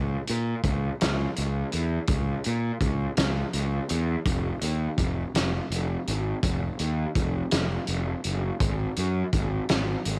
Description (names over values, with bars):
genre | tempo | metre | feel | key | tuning
indie rock | 55 BPM (dotted quarters) | 6/8 | straight | unclear | A4 = 440 Hz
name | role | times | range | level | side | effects
fuzz fingered electric bass | bass | 0.0-10.2 s | F1 to Bb2 | -29 LUFS | equal | overdrive
loose indie drum kit | drums | 0.3-10.2 s | hi-hat, kick drum, snare drum | -30 LUFS | equal | cassette tape
room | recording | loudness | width
little or no reverb | home recording on cassette | -27 LUFS | mono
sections
0.0-10.2 A section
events
none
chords
none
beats
1.00 | 2.08 3.17 | 4.26 5.35 | 6.44 7.53 | 8.62 9.70